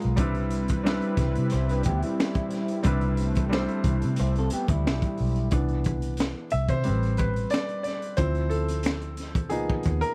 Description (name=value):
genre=R&B, neo-soul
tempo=90 BPM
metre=4/4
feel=swing 54% on 16ths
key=C major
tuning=A4 = 440 Hz
part: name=electric guitar through a small old amp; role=second line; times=0.0-5.5 s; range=G3 to C5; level=-33 LUFS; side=equal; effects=none
part: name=clear grand piano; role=accompaniment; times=0.0-10.1 s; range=E3 to E5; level=-32 LUFS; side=equal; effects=none
part: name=vintage muted fingered electric bass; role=bass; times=0.0-10.0 s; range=A1 to C3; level=-29 LUFS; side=equal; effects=none
part: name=crunchy breakbeat drum kit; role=drums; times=0.0-10.1 s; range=finger snaps, hi-hat, kick drum, snare drum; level=-31 LUFS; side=equal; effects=none
part: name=lush unison pad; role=sustained chords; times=0.2-5.5 s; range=G3 to B4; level=-37 LUFS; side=equal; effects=chorus, phaser
room=little or no reverb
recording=vinyl crackle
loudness=-26 LUFS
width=mono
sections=0.0-5.5 A section; 5.5-10.1 B section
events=grand piano solo 5.5-10.1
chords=0.2 Cmaj7; 6.8 Am9; 8.2 Dm9; 9.5 Db13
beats=| 0.18 0.84 1.51 2.18 | 2.85 3.51 4.18 4.84 | 5.51 6.18 6.84 7.51 | 8.18 8.85 9.51